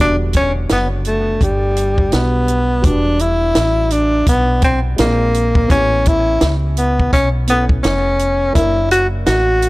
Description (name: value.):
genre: hip hop, jazz-hop.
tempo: 84 BPM.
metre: 4/4.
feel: swing 59% on 16ths.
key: E dorian.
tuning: A4 = 440 Hz.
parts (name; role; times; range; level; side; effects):
mellow tenor saxophone; melody; 0.0-9.7 s; G3 to F#4; -16 LUFS; equal; analog delay.
dark upright piano; accompaniment; 0.0-9.7 s; D3 to B4; -26 LUFS; equal; none.
woody fretless electric bass; bass; 0.0-9.7 s; E1 to C#2; -18 LUFS; equal; wide subtle chorus.
compact cocktail drum kit; drums; 0.3-9.7 s; hi-hat, kick drum, snare drum; -17 LUFS; equal; none.
room: studio ambience.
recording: dry, gritty hardware recording.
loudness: -12 LUFS.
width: side -20 dB against mid.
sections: 0.0-2.8 A section; 2.8-9.7 B section.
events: none.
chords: 0.0 Em9; 2.8 Em7; 5.0 A#9; 5.7 A9; 8.6 F#7alt.